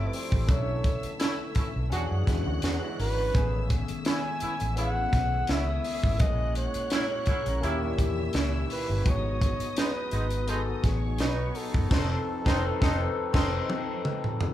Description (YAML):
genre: lush 1970s-style soul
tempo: 84 BPM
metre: 4/4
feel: swing 54% on 16ths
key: unclear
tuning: A4 = 441 Hz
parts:
  - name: mellow flugelhorn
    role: melody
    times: 0.0-14.1 s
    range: G#4 to G#5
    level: -33 LUFS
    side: equal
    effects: none
  - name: rich studio string section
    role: second line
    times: 0.0-13.6 s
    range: C5 to F#6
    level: -42 LUFS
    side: left 1 dB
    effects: none
  - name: overdriven tine electric piano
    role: accompaniment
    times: 0.0-14.5 s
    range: D#3 to G#5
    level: -34 LUFS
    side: left 4 dB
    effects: phaser
  - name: percussive tonewheel organ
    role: sustained chords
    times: 0.0-14.5 s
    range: A#2 to C#5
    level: -42 LUFS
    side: equal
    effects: none
  - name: warm horn section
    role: stabs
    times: 0.0-13.5 s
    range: A#2 to F#4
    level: -36 LUFS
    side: right 2 dB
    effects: none
  - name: vintage muted fingered electric bass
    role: bass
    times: 0.0-13.6 s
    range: F1 to F#2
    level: -30 LUFS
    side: equal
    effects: none
  - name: tight funk drum kit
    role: drums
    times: 0.1-14.5 s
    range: crash cymbal, hi-hat, kick drum, snare drum, toms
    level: -28 LUFS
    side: equal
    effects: none
  - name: electric guitar through a small old amp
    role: riff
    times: 2.3-8.9 s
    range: G3 to A#4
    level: -38 LUFS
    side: right 1 dB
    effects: none
room: moderate large studio reverb, RT60 1.3 s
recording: band playing live in one room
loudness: -25 LUFS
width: side -12 dB against mid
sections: 0.0-14.5 A section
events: band accent 11.9-14.5; drum fill 13.3-14.5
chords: 0.5 Bm11; 1.9 E13; 3.3 Amaj9#11; 6.2 A#m7b5; 7.6 D#7b9; 9.1 G#m7; 11.9 F7#11